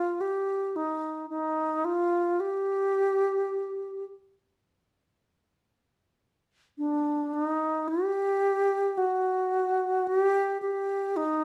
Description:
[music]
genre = arabic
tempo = free time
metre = none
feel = none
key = unclear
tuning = A4 = 440 Hz
[part]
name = alto flute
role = solo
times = 0.0-11.4 s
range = D4 to G4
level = -28 LUFS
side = equal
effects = slapback echo
[sound]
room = moderate studio reverb, RT60 0.6 s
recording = dark, warm production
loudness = -28 LUFS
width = mono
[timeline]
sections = 0.0-4.6 A section; 4.6-11.4 B section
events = none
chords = none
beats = free time

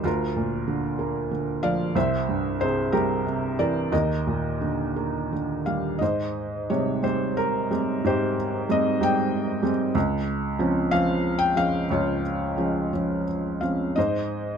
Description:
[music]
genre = classical, lyrical solo piano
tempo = 56-65 BPM (dotted quarters)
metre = 6/8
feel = rubato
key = Eb major, Ab major from 6.0 s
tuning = A4 = 439 Hz
[part]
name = felt-muted upright piano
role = solo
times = 0.0-14.6 s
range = C2 to G5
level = -22 LUFS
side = right 1 dB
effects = none
[sound]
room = light reverb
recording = close, detailed microphones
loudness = -22 LUFS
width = side -7 dB against mid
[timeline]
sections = 0.0-6.0 A section; 6.0-14.6 B section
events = none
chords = 0.0 Bb/D; 1.9 C7; 3.9 Ebmaj7; 6.0 Abmaj7; 9.9 Dbmaj7; 14.0 Ab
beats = | 0.03 0.99 | 1.95 2.93 | 3.93 4.96 | 6.01 7.03 | 8.04 9.00 | 9.95 10.91 | 11.89 12.92 | 13.96

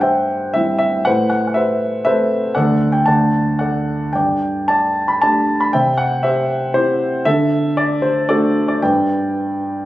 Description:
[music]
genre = classical, lyrical solo piano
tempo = 106-123 BPM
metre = 3/4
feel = rubato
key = G major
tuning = A4 = 441 Hz
[part]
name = dark concert grand piano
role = solo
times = 0.0-9.9 s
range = D2 to B5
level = -14 LUFS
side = equal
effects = none
[sound]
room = moderate recital hall reverb, RT60 1.5 s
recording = recorded on a phone in the room, club ambience, compression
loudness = -14 LUFS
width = side -15 dB against mid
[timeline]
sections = 0.0-9.9 A section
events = none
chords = 0.0 C/G; 1.1 Amadd9; 2.6 D5; 3.1 D; 4.1 Gsus2; 5.7 C; 7.3 D; 8.8 G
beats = 0.04 0.56 | 1.06 1.56 2.06 | 2.56 3.07 3.60 | 4.15 4.69 5.23 | 5.74 6.25 6.75 | 7.26 7.77 8.29 | 8.82 9.36

